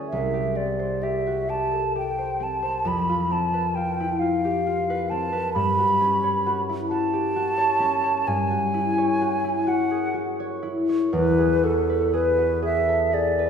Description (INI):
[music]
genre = classical, impressionist duo for flute and harp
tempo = 38-45 BPM (dotted quarters)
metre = 6/8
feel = rubato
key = unclear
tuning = A4 = 441 Hz
[part]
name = concert harp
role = accompaniment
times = 0.0-13.5 s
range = C2 to C#5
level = -24 LUFS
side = left 2 dB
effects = none
[part]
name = hollow concert flute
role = melody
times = 0.1-13.5 s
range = A4 to B5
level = -23 LUFS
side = right 1 dB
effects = none
[sound]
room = wet scoring stage reverb, RT60 1.8 s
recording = heard from further back in the room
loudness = -21 LUFS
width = side -7 dB against mid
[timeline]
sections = 0.0-13.5 A section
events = none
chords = 0.1 C5; 2.9 Fmaj7#11; 5.6 Gmaj7#11; 8.3 E69/G; 11.1 Eadd9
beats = | 0.10 1.50 | 2.87 4.21 | 5.56 6.91 | 8.28 9.70 | 11.14 12.63